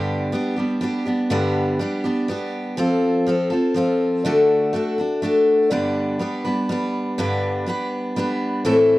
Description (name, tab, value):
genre	country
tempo	122 BPM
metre	3/4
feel	straight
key	unclear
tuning	A4 = 441 Hz
part	picked steel-string acoustic guitar	solo	0.0-9.0 s	G2 to B4	-18 LUFS	equal	none
room	light reverb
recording	dry, close 1970s-style studio recording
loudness	-19 LUFS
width	side -17 dB against mid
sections	0.0-1.3 A section; 1.3-9.0 A section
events	none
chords	0.0 G; 2.8 F; 4.2 D; 5.7 G